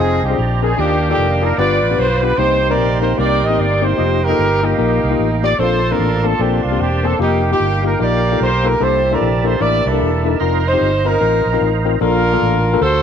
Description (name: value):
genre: gospel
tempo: 150 BPM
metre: 4/4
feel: swing 61% on 8ths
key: Bb major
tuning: A4 = 441 Hz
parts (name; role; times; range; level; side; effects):
- warm horn section; melody; 0.0-13.0 s; Bb3 to Eb5; -16 LUFS; right 1 dB; none
- barky tine electric piano; accompaniment; 0.0-13.0 s; G2 to C5; -20 LUFS; left 14 dB; none
- percussive tonewheel organ; sustained chords; 0.0-12.0 s; Bb3 to C6; -25 LUFS; right 15 dB; slow rotary speaker, overdrive, chorus vibrato
- fingered electric bass; bass; 0.0-13.0 s; E1 to Eb2; -19 LUFS; right 2 dB; none
room: light reverb, digital ambience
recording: 1960s-style stereo with parts hard left and right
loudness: -13 LUFS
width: side -8 dB against mid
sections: 0.0-12.0 A section; 12.0-13.0 B section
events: none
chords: 0.0 Fm7; 0.4 Bb9; 0.8 Ebmaj9; 1.6 G7; 2.4 Cm7; 4.0 F9sus4; 5.6 Bbmaj9; 7.2 F9sus4; 8.8 C13; 10.4 F7sus4; 12.0 Bbmaj7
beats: 0.38 | 0.78 1.18 1.58 1.98 | 2.38 2.79 3.19 3.59 | 3.99 4.39 4.79 5.19 | 5.59 5.99 6.39 6.80 | 7.20 7.60 8.00 8.40 | 8.80 9.21 9.61 10.01 | 10.41 10.81 11.21 11.62 | 12.02 12.42 12.82